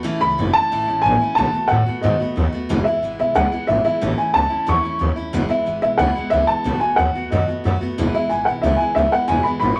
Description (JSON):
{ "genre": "rockabilly", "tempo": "182 BPM", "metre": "4/4", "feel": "straight", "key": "E major", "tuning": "A4 = 440 Hz", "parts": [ { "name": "picked steel-string acoustic guitar", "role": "accompaniment", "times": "0.0-9.8 s", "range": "E2 to F#4", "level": "-28 LUFS", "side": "equal", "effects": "none" }, { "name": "upright bass", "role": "bass", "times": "0.1-9.7 s", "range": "E1 to A2", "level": "-24 LUFS", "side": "equal", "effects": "none" }, { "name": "dark upright piano", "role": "melody", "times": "0.2-9.8 s", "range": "D#5 to C#6", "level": "-20 LUFS", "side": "equal", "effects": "none" } ], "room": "moderate club reverb, RT60 0.6 s", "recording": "none", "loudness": "-19 LUFS", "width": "mono", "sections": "0.0-2.7 A section; 2.7-9.8 B section", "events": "none", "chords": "0.1 A; 1.4 B7; 2.7 E; 4.0 A; 5.3 E; 6.7 B7; 8.0 E" }